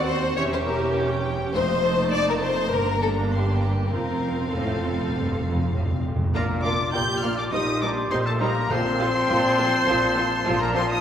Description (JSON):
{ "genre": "quick classical-period movement for symphony orchestra", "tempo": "102 BPM", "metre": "4/4", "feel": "straight", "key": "unclear", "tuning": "A4 = 440 Hz", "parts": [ { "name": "rich chamber violin section", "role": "melody", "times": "0.0-11.0 s", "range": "E5 to G6", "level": "-30 LUFS", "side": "left 3 dB", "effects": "none" }, { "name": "rich chamber viola section", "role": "accompaniment", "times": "0.0-10.8 s", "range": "F3 to G4", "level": "-28 LUFS", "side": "right 2 dB", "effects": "none" }, { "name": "clear chamber double bass section", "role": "bass", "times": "0.0-11.0 s", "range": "E1 to Eb2", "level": "-31 LUFS", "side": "right 2 dB", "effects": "none" }, { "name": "rich studio cello section", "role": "bass", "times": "0.0-11.0 s", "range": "Eb2 to Bb2", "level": "-29 LUFS", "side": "right 1 dB", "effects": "none" }, { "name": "warm chamber violin section", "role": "second line", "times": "0.1-10.8 s", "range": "G4 to D5", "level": "-28 LUFS", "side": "left 3 dB", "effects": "none" }, { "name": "timpani", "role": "percussion", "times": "1.5-9.5 s", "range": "F2 to Bb2", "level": "-28 LUFS", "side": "equal", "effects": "none" }, { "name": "warm clarinet", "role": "second line", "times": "6.3-11.0 s", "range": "F4 to G4", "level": "-32 LUFS", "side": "left 4 dB", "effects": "none" }, { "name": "warm French horn section", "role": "sustained chords", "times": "6.3-11.0 s", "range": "A3 to G4", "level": "-27 LUFS", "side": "left 1 dB", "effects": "none" }, { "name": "clear oboe", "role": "second line", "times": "6.4-11.0 s", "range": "A4 to G5", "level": "-28 LUFS", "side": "right 1 dB", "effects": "none" }, { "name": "silver concert flute", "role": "second line", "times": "6.4-11.0 s", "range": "A5 to D6", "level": "-32 LUFS", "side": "left 1 dB", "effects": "none" } ], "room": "wet recital hall reverb, RT60 1.6 s", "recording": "recorded in a church or concert hall", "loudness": "-21 LUFS", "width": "side -9 dB against mid", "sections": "0.0-6.3 A section; 6.3-11.0 B section", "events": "timpani fill 3.9-6.3", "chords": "0.4 Edim7; 1.5 F7; 2.7 Gm; 3.9 F; 6.3 Bb; 7.5 Cm7/Bb; 8.7 F/Bb", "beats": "0.37 0.96 | 1.55 2.13 2.72 3.31 | 3.91 4.53 5.14 5.74 | 6.34 6.94 7.53 8.12 | 8.71 9.29 9.88 10.46" }